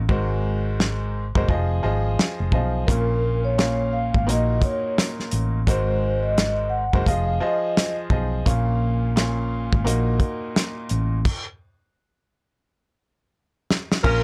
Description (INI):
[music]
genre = hip hop, boom-bap hip-hop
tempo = 86 BPM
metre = 4/4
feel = swing 61% on 16ths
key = Bb minor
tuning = A4 = 439 Hz
[part]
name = hollow-body short-scale fingered electric bass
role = bass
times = 0.0-14.2 s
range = F1 to Cb2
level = -26 LUFS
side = equal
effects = none
[part]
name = bright upright piano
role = accompaniment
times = 0.1-14.2 s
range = Ab2 to F5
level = -30 LUFS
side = equal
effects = high-pass filter, low-pass filter
[part]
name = warm soul drum kit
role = drums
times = 0.1-14.2 s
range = crash cymbal, hi-hat, kick drum, snare drum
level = -24 LUFS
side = equal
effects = none
[part]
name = vibraphone with soft mallets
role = melody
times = 2.9-8.0, 14.0-14.2 s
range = Bb4 to Gb5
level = -28 LUFS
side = equal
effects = high-pass filter, low-pass filter
[part]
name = mellow horn section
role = stabs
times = 14.0-14.2 s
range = F3 to Bb4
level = -24 LUFS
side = equal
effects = high-pass filter, low-pass filter
[sound]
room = little or no reverb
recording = none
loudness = -22 LUFS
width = mono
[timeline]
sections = 0.0-14.0 A section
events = break 0.0-2.9; stop 11.3-14.0; drum fill 13.3-14.0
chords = 0.1 Ab7; 1.5 Fm7; 2.9 Bbm; 4.3 Ebm/Bb; 5.7 Ab7; 7.1 Fm7; 8.5 Bbm; 9.9 Ebm/Bb; 11.3 N.C.